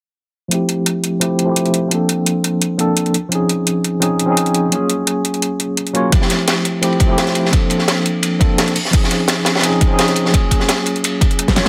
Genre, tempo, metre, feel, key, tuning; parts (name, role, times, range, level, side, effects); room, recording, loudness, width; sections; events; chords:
liquid drum and bass; 171 BPM; 4/4; straight; A4 = 440 Hz
tine electric piano; accompaniment; 0.5-11.7 s; F3 to Db5; -19 LUFS; equal; medium tremolo, low-pass filter, digital delay
pop drum kit; drums; 0.5-11.7 s; hi-hat, snare drum; -22 LUFS; equal; overdrive
crunchy breakbeat drum kit; drums; 6.1-11.7 s; hi-hat, ride cymbal, snare drum; -21 LUFS; equal; high-pass filter on cymbals, high-pass filter on hats, high-pass filter on snare, high-pass filter on room
electronic kick drum; drums; 6.1-11.5 s; -17 LUFS; equal; overdrive
small room ambience; -16 LUFS; mono
0.5-11.7 A section
filter sweep on tine electric piano 0.5-11.7; drum fill 11.5
0.5 Fmaj9; 1.9 Bbmaj9; 3.1 Dbmaj9; 4.7 Gbmaj9; 6.1 Fmaj9; 7.5 Bbmaj9; 8.8 Dbmaj9; 10.3 Gbmaj9